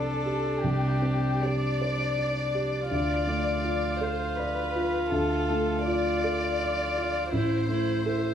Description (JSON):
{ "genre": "neoclassical piano and strings", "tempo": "82 BPM", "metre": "3/4", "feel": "rubato", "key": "D dorian", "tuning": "A4 = 440 Hz", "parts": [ { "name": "warm chamber violin section", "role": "melody", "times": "0.0-8.3 s", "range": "G4 to D5", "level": "-30 LUFS", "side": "left 3 dB", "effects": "plate reverb" }, { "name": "dark grand piano", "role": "accompaniment", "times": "0.0-8.3 s", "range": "A1 to D5", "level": "-28 LUFS", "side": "right 1 dB", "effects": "none" }, { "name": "rich viola", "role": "accompaniment", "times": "0.0-8.3 s", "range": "D4 to F4", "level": "-32 LUFS", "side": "right 2 dB", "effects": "none" } ], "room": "moderate large studio reverb, RT60 0.8 s", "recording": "small room ambience", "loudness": "-25 LUFS", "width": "side -9 dB against mid", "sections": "0.0-8.3 A section", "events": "none", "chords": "0.0 Csus2; 2.9 Dm; 7.3 Am", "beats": "| 0.63 1.42 2.17 | 2.91 3.64 4.38 | 5.11 5.87 6.60 | 7.33 8.06" }